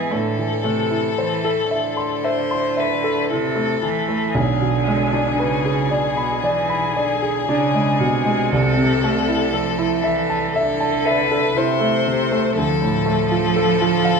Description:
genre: classical, slow romantic movement for piano trio.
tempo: 58 BPM.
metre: 4/4.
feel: rubato.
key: A minor.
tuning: A4 = 440 Hz.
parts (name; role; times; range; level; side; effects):
warm violin; melody; 0.0-14.2 s; G#4 to C5; -22 LUFS; left 7 dB; none.
clear cello; second line; 0.0-14.2 s; B2 to F3; -23 LUFS; right 5 dB; none.
warm grand piano; accompaniment; 0.0-14.2 s; B1 to C6; -20 LUFS; right 1 dB; none.
room: wet recital hall reverb, RT60 1.4 s.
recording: minimal, uncompressed stereo recording.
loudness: -17 LUFS.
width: side -5 dB against mid.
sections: 0.0-14.2 A section.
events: none.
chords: 0.1 Am; 4.3 G#dim/B; 8.5 Am/C; 12.6 Dm.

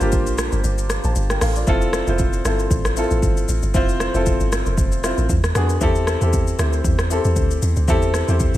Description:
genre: amapiano.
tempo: 116 BPM.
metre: 4/4.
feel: swing 55% on 16ths.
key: unclear.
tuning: A4 = 440 Hz.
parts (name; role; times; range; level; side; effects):
warm baby grand piano; accompaniment; 0.0-8.6 s; Bb3 to A5; -22 LUFS; left 1 dB; none.
deep log drum bass; bass; 0.0-8.6 s; F1 to F2; -20 LUFS; equal; none.
deep house drum kit; drums; 0.0-8.6 s; hi-hat, kick drum, rim click, shaker; -22 LUFS; equal; none.
room: digital ambience.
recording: none.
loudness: -17 LUFS.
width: side -14 dB against mid.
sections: 0.0-8.6 A section.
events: kick muted 0.6-1.7.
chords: 0.0 Gm9; 1.7 Fmaj9; 5.3 E7; 5.8 Am7.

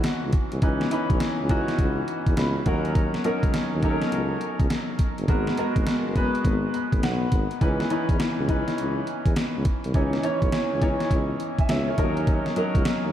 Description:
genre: R&B, new jack swing.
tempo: 103 BPM.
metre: 4/4.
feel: swing 64% on 16ths.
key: C# dorian.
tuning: A4 = 439 Hz.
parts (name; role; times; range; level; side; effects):
clear grand piano; accompaniment; 0.0-13.1 s; E3 to B5; -26 LUFS; equal; wide subtle chorus.
breathy tuba; bass; 0.0-13.1 s; F#1 to E2; -28 LUFS; equal; none.
gated 80s digital drum machine; drums; 0.0-13.0 s; hi-hat, kick drum, snare drum; -25 LUFS; equal; gated reverb, gated reverb snare, overdrive.
room: moderate cathedral reverb, RT60 6.1 s.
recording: dreamy mix soaked in reverb.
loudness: -22 LUFS.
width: side -11 dB against mid.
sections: 0.0-13.1 A section.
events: grand piano fill 2.1-3.0, 6.4-7.6.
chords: 0.0 C#m9; 2.7 D#m7; 5.3 G#m9; 7.6 C#m9; 12.0 D#m7.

